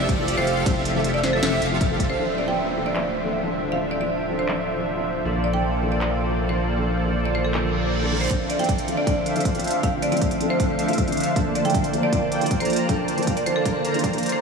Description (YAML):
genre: future bass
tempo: 157 BPM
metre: 4/4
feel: half-time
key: D minor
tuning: A4 = 440 Hz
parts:
  - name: airy dreamy lead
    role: arpeggios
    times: 0.0-2.2 s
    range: D5 to F5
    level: -34 LUFS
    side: right 1 dB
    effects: chorus, sidechain pumping, analog delay
  - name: big bright polysynth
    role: riff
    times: 0.0-14.4 s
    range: D3 to Bb5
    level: -26 LUFS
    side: right 1 dB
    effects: analog chorus, sidechain pumping, analog delay
  - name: saturated sub bass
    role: bass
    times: 0.0-8.3 s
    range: D1 to Bb1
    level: -28 LUFS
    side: equal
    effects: sidechain pumping
  - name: electronic kick drum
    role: drums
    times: 0.1-2.1, 8.3-14.1 s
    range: none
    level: -25 LUFS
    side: equal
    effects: studio ambience
  - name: trap drum kit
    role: drums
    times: 0.1-14.4 s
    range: handclaps, hi-hat, ride cymbal, snare drum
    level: -32 LUFS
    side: right 1 dB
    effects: low-pass filter on hats, studio ambience, low-pass filter on cymbals, low-pass filter on snare
  - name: felt-muted upright piano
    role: accompaniment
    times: 0.2-14.2 s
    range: F3 to C5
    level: -28 LUFS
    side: left 3 dB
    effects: analog chorus, sidechain pumping, analog delay
  - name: marimba with hard mallets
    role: melody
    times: 0.4-14.4 s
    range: A4 to G5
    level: -27 LUFS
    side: right 1 dB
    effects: sidechain pumping, analog delay
  - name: ethereal airy pad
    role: sustained chords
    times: 3.5-14.4 s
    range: C3 to Bb4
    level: -31 LUFS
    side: right 2 dB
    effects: ensemble chorus, built-in reverb, phaser, sidechain pumping
  - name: downlifter and reverse cymbal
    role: sound effects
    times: 2.2-8.3 s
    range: none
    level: -36 LUFS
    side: right 3 dB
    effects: none
room: wet huge ambient reverb, RT60 8.1 s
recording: dreamy mix soaked in reverb, high-pass filter, studio ambience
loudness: -20 LUFS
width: side -5 dB against mid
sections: 0.0-2.2 A section; 2.2-8.3 B section; 8.3-14.4 C section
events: drop 0.0-2.2; reverse cymbal 7.7-8.3; build-up 8.3-14.4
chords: 0.0 Fmaj7; 2.2 Dm7; 5.2 Bbmaj7; 8.3 Dm7; 11.4 Bbmaj7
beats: 0.28 | 0.66 1.04 1.43 1.81 | 2.19 2.57 2.96 3.34 | 3.72 4.10 4.48 4.87 | 5.25 5.63 6.01 6.39 | 6.78 7.16 7.54 7.92 | 8.31 8.69 9.07 9.45 | 9.84 10.22 10.60 10.98 | 11.36 11.75 12.13 12.51 | 12.89 13.27 13.66 14.04